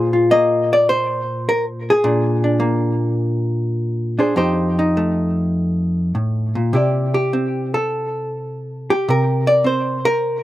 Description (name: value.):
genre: solo jazz.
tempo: 103 BPM.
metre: 4/4.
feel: swing 69% on 8ths, rubato.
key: unclear.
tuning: A4 = 440 Hz.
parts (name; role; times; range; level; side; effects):
hollow-body jazz guitar; solo; 0.0-10.4 s; F2 to Eb5; -16 LUFS; equal; none.
room: little or no reverb.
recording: recorded outdoors, with no room sound.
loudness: -16 LUFS.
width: side -14 dB against mid.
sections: 0.0-10.4 A section.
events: none.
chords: 0.0 Bb9; 4.4 F9; 6.7 C9.